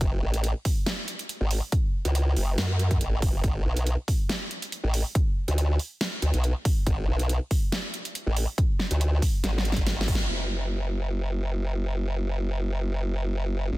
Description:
heavy wobble dubstep; 140 BPM; 4/4; swing 53% on 16ths, half-time; A4 = 440 Hz
formant-sweep wobble bass; bass; 0.0-13.8 s; F#1 to F#2; -25 LUFS; equal; chorus, overdrive
dubstep drum kit; drums; 0.0-13.8 s; hi-hat, snare drum; -31 LUFS; right 1 dB; low-pass filter on toms, low-pass filter on hats, low-pass filter on cymbals, low-pass filter on snare
electronic kick drum; drums; 0.0-10.2 s; -25 LUFS; equal
digital ambience; dense, heavily limited modern master; -24 LUFS; side -19 dB against mid
0.0-10.3 A section; 10.3-13.8 B section
drop 0.0-10.3; drum fill 9.4-10.3; band accent 10.2
| 0.01 0.44 0.86 1.29 | 1.72 2.15 2.58 3.01 | 3.44 3.87 4.29 4.72 | 5.15 5.58 6.01 6.44 | 6.87 7.29 7.72 8.15 | 8.58 9.01 9.44 9.87 | 10.29 10.72 11.15 11.58 | 12.01 12.44 12.87 13.29 | 13.72

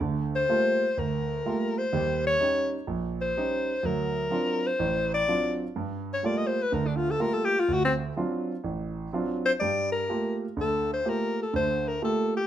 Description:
jazz; 125 BPM; 4/4; swing 69% on 8ths; G minor; A4 = 440 Hz
warm concert grand piano; accompaniment; 0.0-12.4 s; A1 to G4; -29 LUFS; right 4 dB
warm alto saxophone; melody; 0.4-12.5 s; C4 to Eb5; -26 LUFS; left 2 dB
moderate large studio reverb, RT60 0.9 s; minimal, uncompressed stereo recording; -25 LUFS; side -11 dB against mid
0.0-9.6 A section; 9.6-12.5 B section
alto saxophone solo 0.0-9.6
0.0 Gm9; 1.9 Eb7; 3.8 D7#9; 5.8 Gm9; 7.7 D7#9; 9.6 Gm9
| 0.01 0.49 0.97 1.45 | 1.93 2.40 2.88 3.36 | 3.84 4.32 4.80 5.28 | 5.75 6.24 6.72 7.20 | 7.68 8.16 8.64 9.13 | 9.61 10.09 10.58 11.06 | 11.54 12.03

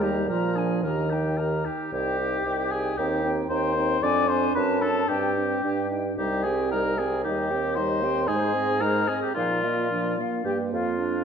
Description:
quick classical-period movement for wind quintet; 112 BPM; 2/4; rubato; C minor; A4 = 441 Hz
silver concert flute; melody; 0.0-11.0 s; C5 to Bb5; -35 LUFS; left 7 dB
warm oboe; second line; 0.0-11.2 s; F4 to D5; -27 LUFS; left 4 dB
mellow clarinet; accompaniment; 0.0-11.2 s; Bb3 to Ab4; -31 LUFS; right 6 dB
warm French horn; accompaniment; 0.0-11.2 s; Eb3 to G4; -31 LUFS; equal
mellow bassoon; bass; 0.0-11.2 s; C2 to Bb2; -28 LUFS; right 2 dB
wet scoring stage reverb, RT60 1.5 s; dark, warm production; -23 LUFS; side -7 dB against mid
0.0-1.9 A section; 1.9-10.5 B section
0.3 Bb7; 0.8 Eb; 1.9 Cm; 3.0 Cm/Eb; 4.0 Dm7b5/F; 4.6 D7/F#; 5.1 Gsus4; 5.6 G5; 6.2 Cm; 7.2 Cm/Eb; 8.3 Ab; 9.4 Bbsus4; 9.9 Bb; 10.5 Eb (rootless)
0.29 | 0.84 1.38 | 1.93 2.46 | 2.99 3.51 | 4.03 4.56 | 5.09 5.64 | 6.18 6.71 | 7.24 7.75 | 8.28 8.81 | 9.35 9.90 | 10.46 10.99

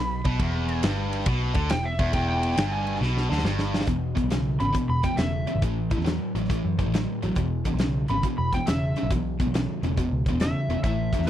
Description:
blues rock power trio and southern rock; 138 BPM; 4/4; swing 67% on 8ths; A4 = 442 Hz
overdriven slide guitar; melody; 0.0-11.3 s; B4 to B5; -30 LUFS; equal
tight distorted guitar; riff; 0.0-11.3 s; E2 to F#3; -27 LUFS; equal; distortion
vintage muted picked electric bass; bass; 0.0-11.3 s; E1 to F#2; -27 LUFS; equal
big rock drum kit; drums; 0.2-11.3 s; hi-hat, kick drum, ride cymbal, snare drum; -28 LUFS; equal
little or no reverb; dry, close 1970s-style studio recording; -23 LUFS; side -11 dB against mid
0.0-3.9 A section; 3.9-11.3 B section
electric slide guitar solo 0.0-3.9; drum fill 3.0-3.9
0.4 E5; 5.6 A5; 7.4 E5
| 0.40 0.84 1.27 1.71 | 2.14 2.58 3.01 3.44 | 3.88 4.32 4.75 5.19 | 5.62 6.06 6.50 6.93 | 7.37 7.80 8.23 8.67 | 9.10 9.54 9.97 10.40 | 10.83 11.26

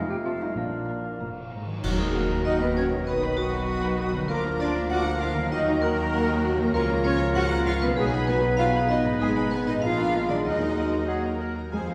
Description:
cinematic, playful, whimsical film cue; 97 BPM; 2/4; straight; Eb minor; A4 = 440 Hz
vibraphone with hard mallets; melody; 0.0-11.0 s; F3 to Gb5; -34 LUFS; equal
clear oboe; second line; 0.0-11.9 s; Ab4 to F5; -38 LUFS; equal
silver concert flute; second line; 0.0-11.8 s; Gb4 to G5; -36 LUFS; equal
warm bassoon; accompaniment; 0.0-11.9 s; Eb3 to Bb3; -37 LUFS; equal
mellow French horn section; sustained chords; 0.0-11.9 s; A3 to Ab4; -34 LUFS; equal
concert harp; arpeggios; 0.0-11.9 s; F2 to Bb5; -36 LUFS; equal
warm studio cello section; bass; 0.0-11.8 s; F2 to Gb4; -34 LUFS; equal
warm studio double bass section; bass; 0.0-11.9 s; F1 to F2; -33 LUFS; equal
mellow clarinet; second line; 0.1-11.9 s; D4 to C5; -39 LUFS; equal
warm studio violin section; melody; 0.3-11.9 s; F5 to D#6; -42 LUFS; equal
rich studio violin section; second line; 0.3-11.9 s; Gb4 to Gb5; -39 LUFS; equal
warm studio viola section; accompaniment; 0.3-11.9 s; Gb3 to C5; -36 LUFS; equal
clash cymbals and concert bass drum; percussion; 1.8-3.0 s; -37 LUFS; equal
wet scoring stage reverb, RT60 1.5 s; heard from further back in the room; -25 LUFS; mono
0.0-1.8 A section; 1.8-11.7 B section
band accent 1.8-2.5
0.0 F7; 0.6 Bb; 1.8 Ebm; 3.1 B; 4.3 Bb/D; 5.5 Ebm; 6.7 Bbm/Db; 8.0 B6; 9.2 Abm; 9.8 Bb7b9; 10.5 Ebm
| 0.57 1.21 | 1.84 2.46 | 3.07 3.68 | 4.29 4.91 | 5.52 6.13 | 6.74 7.36 | 7.98 8.59 | 9.21 9.83 | 10.46 11.09 | 11.72

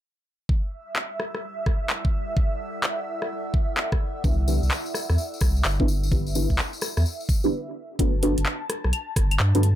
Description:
UK garage, two-step garage; 128 BPM; 4/4; swing 64% on 16ths; G major; A4 = 441 Hz
airy breathy pad; sustained chords; 0.8-9.8 s; E5 to A5; -35 LUFS; right 2 dB; chorus, sidechain pumping
electronic kick drum; drums; 0.5-9.3 s; -23 LUFS; equal
warbly tape-like pad; texture; 1.2-7.5 s; G3 to F#5; -38 LUFS; equal; chorus, built-in reverb, sidechain pumping
garage drum kit; drums; 1.0-9.8 s; claves, handclaps, hi-hat, rim click; -27 LUFS; left 1 dB
deep mellow chord stab; stabs; 4.2-9.6 s; D4 to B4; -26 LUFS; equal; chorus, phaser, tape echo
saturated sub bass; bass; 4.2-9.8 s; G1 to G2; -22 LUFS; equal; tube saturation, sidechain pumping
tambourine; percussion; 4.2-7.5 s; -35 LUFS; left 4 dB
little or no reverb; -22 LUFS; side -12 dB against mid
0.5-8.0 A section; 8.0-9.8 B section
fade-in on ambient pad 0.5-8.0; stop 7.5-8.0
0.5 Gsus2; 4.0 Cmaj7; 8.0 Gmaj9
| 0.49 0.96 1.43 1.90 | 2.37 2.84 3.31 3.77 | 4.24 4.71 5.18 5.65 | 6.12 6.59 7.05 7.52 | 7.99 8.46 8.93 9.40

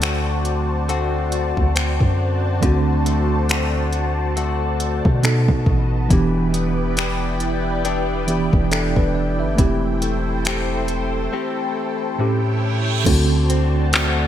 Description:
contemporary R&B; 69 BPM; 4/4; swing 58% on 16ths; A4 = 439 Hz
tine electric piano; accompaniment; 0.0-14.3 s; A2 to E5; -23 LUFS; right 2 dB; medium stereo tremolo
lush unison pad; sustained chords; 0.0-14.3 s; E4 to A5; -26 LUFS; left 1 dB; chorus, phaser, sidechain pumping
direct-recorded clean electric guitar; arpeggios; 0.0-14.3 s; A2 to G4; -26 LUFS; left 7 dB; wide subtle chorus, digital delay
long sustained 808-style bass; bass; 0.0-14.3 s; E1 to B2; -22 LUFS; equal
smooth R&B drum kit; drums; 0.0-14.2 s; crash cymbal, finger snaps, handclaps, hi-hat, kick drum; -21 LUFS; equal; gated reverb
reverse cymbal; sound effects; 12.6-13.1 s; -30 LUFS; right 7 dB
light reverb, digital ambience; bright 1980s-style digital production; -17 LUFS; side -11 dB against mid
0.0-13.1 A section; 13.1-14.3 B section
drums muted 11.3-13.1; reverse cymbal 12.6-13.1
0.0 D7; 5.2 B7; 6.1 Em7; 9.6 Am7/E; 12.2 A7; 13.1 D7
0.02 0.89 1.76 | 2.63 3.50 4.37 5.24 | 6.11 6.97 7.84 8.71 | 9.58 10.45 11.32 12.19 | 13.06 13.93

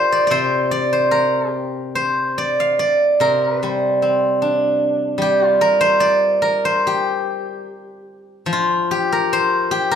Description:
chinese traditional, Chinese solo plucked strings; 74 BPM; 2/4; rubato; G yu mode; A4 = 440 Hz
steel-string zither; solo; 0.0-10.0 s; C3 to F5; -15 LUFS; equal
wet recital hall reverb, RT60 1.4 s; minimal, uncompressed stereo recording; -15 LUFS; side -8 dB against mid
0.0-8.5 A section; 8.5-10.0 B section
| 0.33 1.14 | 1.98 2.82 | 3.62 4.42 | 5.20 6.00 | 6.82 7.64 | 8.48 9.31

